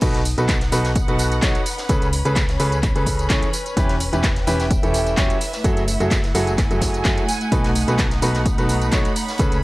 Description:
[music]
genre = piano house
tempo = 128 BPM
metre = 4/4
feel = swing 53% on 16ths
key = B mixolydian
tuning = A4 = 440 Hz
[part]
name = bright concert grand piano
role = riff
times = 0.0-9.6 s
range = B2 to C#5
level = -23 LUFS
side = right 1 dB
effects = sidechain pumping, low-pass filter
[part]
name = solid FM bass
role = bass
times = 0.0-9.6 s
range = E1 to C#2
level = -23 LUFS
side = equal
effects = tube saturation, sidechain pumping
[part]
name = electronic kick drum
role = drums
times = 0.0-9.5 s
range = none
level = -21 LUFS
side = equal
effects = none
[part]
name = house drum kit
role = drums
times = 0.0-9.6 s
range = crash cymbal, handclaps, hi-hat, tambourine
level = -27 LUFS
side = equal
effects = none
[part]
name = tight metal drum kit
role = drums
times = 0.0-9.5 s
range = hi-hat, snare drum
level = -36 LUFS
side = right 1 dB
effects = none
[part]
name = rich studio string section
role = texture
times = 0.0-9.6 s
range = A3 to B5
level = -27 LUFS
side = right 1 dB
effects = sidechain pumping
[sound]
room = small room ambience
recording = dry, gritty hardware recording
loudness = -17 LUFS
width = side -20 dB against mid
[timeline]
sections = 0.0-9.6 A section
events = drop 0.0-9.6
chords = 0.0 B7; 1.7 Amaj9/C#; 3.5 Em6; 5.4 F#m9; 7.5 B7

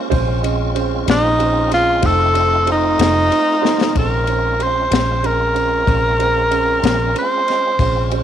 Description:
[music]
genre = slow blues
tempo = 63 BPM (dotted quarters)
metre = 12/8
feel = straight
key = Bb minor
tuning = A4 = 439 Hz
[part]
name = dark upright piano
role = accompaniment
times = 0.0-8.2 s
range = Db4 to Eb5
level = -24 LUFS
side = right 14 dB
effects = none
[part]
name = tonewheel organ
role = sustained chords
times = 0.0-8.2 s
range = Ab3 to F4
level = -25 LUFS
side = equal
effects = slow rotary speaker, chorus vibrato
[part]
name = vintage muted fingered electric bass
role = bass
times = 0.1-8.2 s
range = F1 to Bb1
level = -20 LUFS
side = equal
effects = tube saturation
[part]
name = compact cocktail drum kit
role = drums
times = 0.1-8.2 s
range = kick drum, ride cymbal, snare drum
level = -22 LUFS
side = left 5 dB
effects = none
[part]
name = breathy tenor saxophone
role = melody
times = 1.1-8.1 s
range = Eb4 to C5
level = -16 LUFS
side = equal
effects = none
[sound]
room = light reverb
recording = 1960s-style stereo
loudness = -14 LUFS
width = side -10 dB against mid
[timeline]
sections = 0.0-4.0 A section; 4.0-8.2 B section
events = tenor saxophone solo 0.0-4.0; drum fill 3.6-4.0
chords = 0.0 Bbm7; 2.0 F7; 4.0 Bbm7

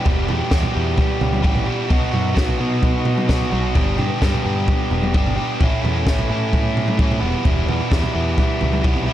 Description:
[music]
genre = indie rock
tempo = 130 BPM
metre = 4/4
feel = straight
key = unclear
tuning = A4 = 440 Hz
[part]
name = biting overdriven guitar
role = riff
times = 0.0-9.1 s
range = E2 to G4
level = -22 LUFS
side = equal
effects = none
[part]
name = growling picked electric bass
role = bass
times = 0.1-9.1 s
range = E1 to B2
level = -22 LUFS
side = equal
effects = overdrive
[part]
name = compact cocktail drum kit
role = drums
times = 0.1-9.1 s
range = kick drum, snare drum, toms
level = -19 LUFS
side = equal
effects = none
[sound]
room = little or no reverb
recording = dark, warm production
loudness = -16 LUFS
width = side -12 dB against mid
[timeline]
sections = 0.0-9.1 A section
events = none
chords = 0.0 Em; 1.9 B; 3.8 G; 5.6 A; 7.2 Em

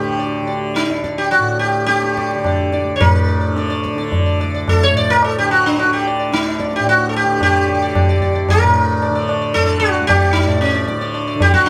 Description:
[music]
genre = indian classical, Hindustani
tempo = 105-115 BPM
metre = 5/4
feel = straight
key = unclear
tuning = A4 = 440 Hz
[part]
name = sitar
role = melody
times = 0.0-11.7 s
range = C#4 to D5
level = -18 LUFS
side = equal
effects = none
[part]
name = tanpura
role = drone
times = 0.0-11.7 s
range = D2 to D3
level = -24 LUFS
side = equal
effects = none
[part]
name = tabla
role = percussion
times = 0.2-11.7 s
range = none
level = -21 LUFS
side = equal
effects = none
[sound]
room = little or no reverb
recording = close, detailed microphones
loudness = -16 LUFS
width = mono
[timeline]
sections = 0.0-3.0 A section; 3.0-11.7 B section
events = speeding up 0.0-11.7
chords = none

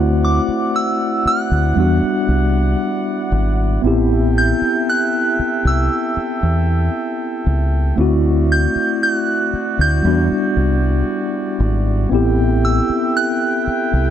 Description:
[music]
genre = contemporary R&B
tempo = 58 BPM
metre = 4/4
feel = straight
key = A dorian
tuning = A4 = 442 Hz
[part]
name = mellow tine electric piano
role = accompaniment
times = 0.0-14.1 s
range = G3 to G4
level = -19 LUFS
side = left 1 dB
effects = medium stereo tremolo
[part]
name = dark brass ensemble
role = sustained chords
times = 0.0-14.1 s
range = G3 to G5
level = -26 LUFS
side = equal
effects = none
[part]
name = deep dub fingered electric bass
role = bass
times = 0.0-14.1 s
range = G#1 to E2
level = -16 LUFS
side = equal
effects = none
[part]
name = soft synth bell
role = melody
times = 0.2-14.1 s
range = D6 to G6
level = -21 LUFS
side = right 1 dB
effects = chorus
[sound]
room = digital ambience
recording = dry, gritty hardware recording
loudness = -15 LUFS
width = side -10 dB against mid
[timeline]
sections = 0.0-14.1 A section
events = none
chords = 0.0 D9; 1.8 Em9; 3.8 Am7; 8.0 D9; 10.0 Em9; 12.1 Am7

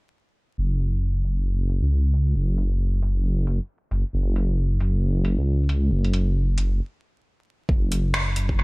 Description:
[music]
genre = future garage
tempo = 135 BPM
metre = 4/4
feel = swing 60% on 16ths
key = unclear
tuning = A4 = 439 Hz
[part]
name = dark detuned saw bass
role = bass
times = 0.6-8.6 s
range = F#1 to C#2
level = -21 LUFS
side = equal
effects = sidechain pumping
[part]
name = garage drum kit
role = drums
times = 0.8-8.5 s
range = finger snaps, hi-hat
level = -28 LUFS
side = equal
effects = dub echo
[part]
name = electronic kick drum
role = drums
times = 7.7-8.6 s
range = none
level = -21 LUFS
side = equal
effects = none
[sound]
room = little or no reverb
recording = echo-heavy mix, vinyl crackle, low-pass filter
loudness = -21 LUFS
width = side -27 dB against mid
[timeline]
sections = 0.6-7.7 A section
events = filter sweep 0.6-7.7; stop 6.8-7.7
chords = none

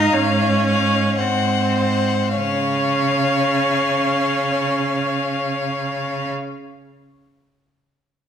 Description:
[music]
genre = classical, slow romantic movement for string quartet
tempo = 48-61 BPM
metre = 3/4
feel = rubato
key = Db major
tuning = A4 = 440 Hz
[part]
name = warm violin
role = melody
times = 0.0-6.3 s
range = F5 to Gb5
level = -24 LUFS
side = left 8 dB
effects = none
[part]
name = rich violin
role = second line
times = 0.0-6.3 s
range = C5 to Eb5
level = -25 LUFS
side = left 3 dB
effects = none
[part]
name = clear viola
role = accompaniment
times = 0.0-6.3 s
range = C4 to Eb4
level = -22 LUFS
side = right 2 dB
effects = none
[part]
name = rich cello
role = bass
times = 0.0-6.3 s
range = Ab2 to Db3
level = -22 LUFS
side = right 3 dB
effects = none
[sound]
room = wet recital hall reverb, RT60 1.5 s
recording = minimal, uncompressed stereo recording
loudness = -17 LUFS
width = side -8 dB against mid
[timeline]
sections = 0.0-2.4 A section; 2.4-5.5 B section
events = slowing down 0.0-2.4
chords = 0.0 Db/Ab; 1.2 Ab7; 2.4 Db

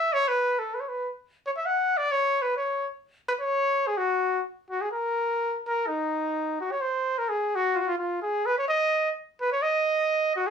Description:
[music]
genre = mexican folk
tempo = 128 BPM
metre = 2/4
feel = swing 54% on 8ths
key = F# minor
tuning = A4 = 440 Hz
[part]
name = warm trumpet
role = solo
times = 0.0-10.5 s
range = D#4 to F#5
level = -24 LUFS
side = equal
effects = none
[sound]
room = light reverb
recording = small room ambience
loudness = -24 LUFS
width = side -7 dB against mid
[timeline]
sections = 0.0-4.9 A section; 4.9-10.5 B section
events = none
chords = none

